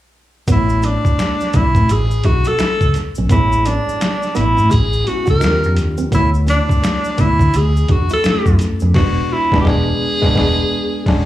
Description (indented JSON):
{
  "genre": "R&B, neo-soul",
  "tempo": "85 BPM",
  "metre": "4/4",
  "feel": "swing 63% on 16ths",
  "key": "A major",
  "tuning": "A4 = 440 Hz",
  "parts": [
    { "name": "breathy tenor saxophone", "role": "melody", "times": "0.5-11.3 s", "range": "D4 to Bb4", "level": "-18 LUFS", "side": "equal", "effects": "slapback echo" },
    { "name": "nylon-string guitar", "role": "second line", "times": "0.5-8.9 s", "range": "B3 to F#4", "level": "-26 LUFS", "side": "right 7 dB", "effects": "slapback echo" },
    { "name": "reed electric piano", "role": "accompaniment", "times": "0.5-11.3 s", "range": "F#3 to C#5", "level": "-23 LUFS", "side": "left 2 dB", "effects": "fast tremolo, slapback echo" },
    { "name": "vintage muted fingered electric bass", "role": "bass", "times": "0.5-11.3 s", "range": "E1 to D3", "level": "-16 LUFS", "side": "equal", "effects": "none" },
    { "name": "boom bap sampler-style drum kit", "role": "drums", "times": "0.5-11.3 s", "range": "crash cymbal, hi-hat, kick drum, snare drum", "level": "-17 LUFS", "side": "equal", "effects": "none" },
    { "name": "tube shaker and finger snaps", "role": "percussion", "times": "0.5-8.9 s", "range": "none", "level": "-34 LUFS", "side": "left 3 dB", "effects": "none" }
  ],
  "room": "light reverb",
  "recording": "live gig heard through the venue's PA, club reverb, faint mains hum",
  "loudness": "-13 LUFS",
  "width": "side -14 dB against mid",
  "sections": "0.5-11.3 A section",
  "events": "band accent 8.9-11.3",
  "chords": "0.5 Amaj9; 5.4 D#6; 6.1 D6; 8.9 E7"
}